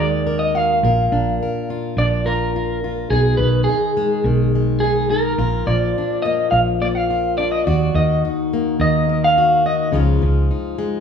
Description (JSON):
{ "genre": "acoustic folk duo or small band", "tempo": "105 BPM", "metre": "4/4", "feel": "straight", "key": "Eb harmonic minor", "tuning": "A4 = 440 Hz", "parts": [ { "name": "electric guitar through a small old amp", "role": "melody", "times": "0.0-9.9 s", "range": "Ab4 to F5", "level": "-19 LUFS", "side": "equal", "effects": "harmonic tremolo" }, { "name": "fingerpicked plugged-in steel-string acoustic guitar", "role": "accompaniment", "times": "0.0-11.0 s", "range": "Eb2 to Bb4", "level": "-22 LUFS", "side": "left 4 dB", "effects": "none" }, { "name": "hollow-body short-scale fingered electric bass", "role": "bass", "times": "0.0-10.5 s", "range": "Bb1 to Eb2", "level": "-20 LUFS", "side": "right 2 dB", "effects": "none" } ], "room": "moderate large studio reverb, RT60 1.1 s", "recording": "band playing live in one room", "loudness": "-16 LUFS", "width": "side -7 dB against mid", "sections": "0.0-11.0 A section", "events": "clean electric guitar solo 0.0-11.0", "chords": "0.0 Ebm; 0.8 Bb; 3.1 Abm/Cb; 5.4 Bb; 7.7 Ebm; 9.9 Dbadd9", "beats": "0.27 | 0.84 1.41 1.98 2.54 | 3.11 3.68 4.25 4.82 | 5.39 5.96 6.53 7.10 | 7.67 8.24 8.80 9.37 | 9.94 10.51" }